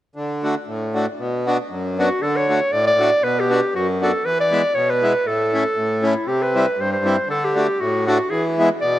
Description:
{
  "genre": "alpine folk",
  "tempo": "118 BPM",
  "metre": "2/4",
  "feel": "swing 54% on 8ths",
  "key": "D major",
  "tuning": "A4 = 440 Hz",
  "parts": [
    { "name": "accordion", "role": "accompaniment", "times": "0.2-9.0 s", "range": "F#2 to F#4", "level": "-20 LUFS", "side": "equal", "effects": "none" },
    { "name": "bright clarinet", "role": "melody", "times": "2.0-9.0 s", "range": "E4 to D5", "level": "-19 LUFS", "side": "equal", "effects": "none" }
  ],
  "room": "moderate lush hall reverb, RT60 3.0 s",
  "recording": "rough home demo mix",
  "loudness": "-17 LUFS",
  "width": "side -14 dB against mid",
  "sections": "0.2-2.2 A section; 2.2-9.0 B section",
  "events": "none",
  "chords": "0.2 D; 1.2 Bm; 2.2 D; 3.2 Bm; 4.2 E; 5.3 A; 6.3 C; 7.3 D; 8.3 E"
}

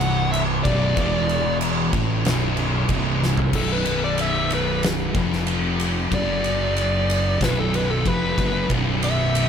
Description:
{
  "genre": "stoner and doom metal",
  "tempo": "93 BPM",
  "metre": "4/4",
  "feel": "straight",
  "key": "unclear",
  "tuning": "A4 = 438 Hz",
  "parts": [
    { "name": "fuzz lead guitar", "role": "melody", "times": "0.0-9.5 s", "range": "A4 to F#5", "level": "-26 LUFS", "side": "left 1 dB", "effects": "distortion, ping-pong delay" },
    { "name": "sludgy distorted guitar", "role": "riff", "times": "0.0-9.5 s", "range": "B1 to A2", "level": "-29 LUFS", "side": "equal", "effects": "none" },
    { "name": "thick fuzz guitar", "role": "riff", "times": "0.0-9.5 s", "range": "B1 to A2", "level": "-27 LUFS", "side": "left 9 dB", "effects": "distortion" },
    { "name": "thick fuzz guitar", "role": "riff", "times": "0.0-9.5 s", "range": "B1 to A2", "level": "-27 LUFS", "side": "right 8 dB", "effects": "distortion" },
    { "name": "fuzz fingered electric bass", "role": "bass", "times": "0.0-9.5 s", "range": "B0 to A1", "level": "-26 LUFS", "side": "equal", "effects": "overdrive" },
    { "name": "oversized low-tuned drum kit", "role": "drums", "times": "0.0-9.5 s", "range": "crash cymbal, kick drum, ride cymbal, snare drum, toms", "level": "-24 LUFS", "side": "equal", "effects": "none" }
  ],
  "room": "light reverb, small room ambience",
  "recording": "none",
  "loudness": "-19 LUFS",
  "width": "side -8 dB against mid",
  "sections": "0.0-3.5 A section; 3.5-9.5 B section",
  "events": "drum fill 3.2-3.5; lead electric guitar solo 3.5-9.5",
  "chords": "0.0 Bm; 3.5 B5"
}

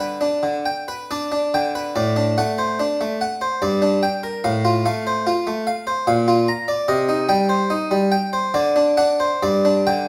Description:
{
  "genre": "classical, baroque-style suite movement for harpsichord",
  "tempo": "72 BPM",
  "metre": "3/4",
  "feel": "uneven beats, rubato",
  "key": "unclear",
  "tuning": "A4 = 440 Hz",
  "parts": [
    { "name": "harpsichord", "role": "solo", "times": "0.0-10.1 s", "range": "G2 to Bb5", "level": "-20 LUFS", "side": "equal", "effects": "none" }
  ],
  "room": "wet recital hall reverb, RT60 1.3 s",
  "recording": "none",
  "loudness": "-20 LUFS",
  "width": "mono",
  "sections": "0.0-10.1 A section",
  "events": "none",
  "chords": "0.0 G; 2.0 D7/A; 3.6 Gm; 4.4 F/A; 6.1 Bb; 6.9 Cm; 8.5 D7; 9.4 G5"
}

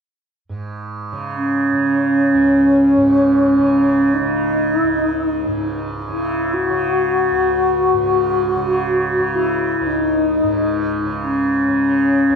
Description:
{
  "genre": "world meditative, free-time meditation music",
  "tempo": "free time",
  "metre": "none",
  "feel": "none",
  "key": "unclear",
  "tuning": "A4 = 440 Hz",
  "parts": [
    { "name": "tanpura", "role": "drone", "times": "0.5-12.4 s", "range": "C#2 to C#3", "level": "-23 LUFS", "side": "right 3 dB", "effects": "none" },
    { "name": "mellow wooden-headed alto flute", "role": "melody", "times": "1.4-12.4 s", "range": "C#4 to F#4", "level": "-15 LUFS", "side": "left 1 dB", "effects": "tape echo" }
  ],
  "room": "wet scoring stage reverb, RT60 2.0 s, small room reverb",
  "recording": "dark, warm production, nothing above 10.8 kHz",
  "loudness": "-14 LUFS",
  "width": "side -6 dB against mid",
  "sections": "0.5-12.4 A section",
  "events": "none",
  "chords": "none"
}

